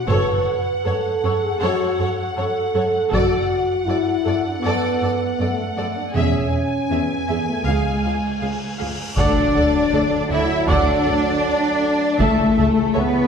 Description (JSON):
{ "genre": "cinematic, epic orchestral film score", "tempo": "79 BPM", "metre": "4/4", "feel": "straight", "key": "unclear", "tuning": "A4 = 440 Hz", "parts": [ { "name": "warm symphonic violin section", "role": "melody", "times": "0.0-13.0 s", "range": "D5 to A5", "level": "-29 LUFS", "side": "equal", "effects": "none" }, { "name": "mellow French horn section", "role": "sustained chords", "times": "0.0-13.3 s", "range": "G#3 to B4", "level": "-23 LUFS", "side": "left 1 dB", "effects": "none" }, { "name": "warm symphonic violin section", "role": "second line", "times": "0.1-13.3 s", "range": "A4 to E#5", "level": "-28 LUFS", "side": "left 3 dB", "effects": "none" }, { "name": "warm symphonic viola section", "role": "accompaniment", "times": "0.1-13.0 s", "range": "G#4 to E5", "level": "-27 LUFS", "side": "right 1 dB", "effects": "none" }, { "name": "rich symphonic cello section", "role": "bass", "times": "0.1-13.3 s", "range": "C#2 to E4", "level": "-22 LUFS", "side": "equal", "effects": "none" }, { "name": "warm studio double bass section", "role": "bass", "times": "0.1-13.0 s", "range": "E1 to D2", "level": "-24 LUFS", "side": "right 2 dB", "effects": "none" }, { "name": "taiko ensemble", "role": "drums", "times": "3.1-4.6, 9.2-12.9 s", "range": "none", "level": "-27 LUFS", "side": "equal", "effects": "none" }, { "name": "cymbal swell and impact", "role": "sound effects", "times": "8.0-12.2 s", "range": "none", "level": "-32 LUFS", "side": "equal", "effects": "none" }, { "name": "clear trombone section", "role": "sustained chords", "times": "9.2-13.3 s", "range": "C#3 to F#3", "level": "-28 LUFS", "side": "right 2 dB", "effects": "none" } ], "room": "wet scoring stage reverb, RT60 1.5 s", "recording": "heard from further back in the room", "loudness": "-17 LUFS", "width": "side -6 dB against mid", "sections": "0.0-9.2 A section; 9.2-13.3 B section", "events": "cymbal swell 8.0-9.2; impact 9.2-12.2", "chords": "0.1 F#m; 3.1 D/F#; 6.2 E; 7.7 C#; 9.2 D; 12.2 A/C#", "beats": "| 0.10 0.85 1.61 2.37 | 3.12 3.88 4.64 5.40 | 6.15 6.91 7.67 8.43 | 9.18 9.94 10.70 11.45 | 12.21 12.97" }